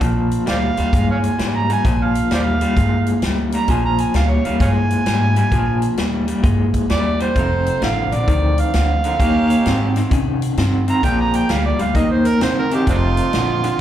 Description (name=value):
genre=electric blues shuffle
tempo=131 BPM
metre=4/4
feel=swing 66% on 8ths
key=Bb mixolydian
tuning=A4 = 440 Hz
part: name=electric guitar through a small old amp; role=riff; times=0.0-13.8 s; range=F2 to Db4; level=-19 LUFS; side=left 1 dB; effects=tremolo
part: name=upright bass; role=bass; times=0.0-13.7 s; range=F1 to Db3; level=-20 LUFS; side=equal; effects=none
part: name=swinging big-band drum kit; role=drums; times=0.0-13.7 s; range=hi-hat, kick drum, snare drum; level=-23 LUFS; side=equal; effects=none
part: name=overdriven harmonica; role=second line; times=0.5-13.8 s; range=C4 to Bb5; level=-22 LUFS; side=right 3 dB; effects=slapback echo
part: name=clear saxophone section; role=stabs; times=7.4-13.7 s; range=A3 to A4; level=-28 LUFS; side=right 2 dB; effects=slapback echo, digital delay
room=light reverb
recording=live gig heard through the venue's PA, club reverb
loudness=-15 LUFS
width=side -11 dB against mid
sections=0.0-13.8 A section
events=harmonica solo 0.0-13.8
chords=0.0 Bb7(no3); 7.4 F7; 9.2 Eb7; 11.0 Bb7; 12.0 Eb7; 12.9 F7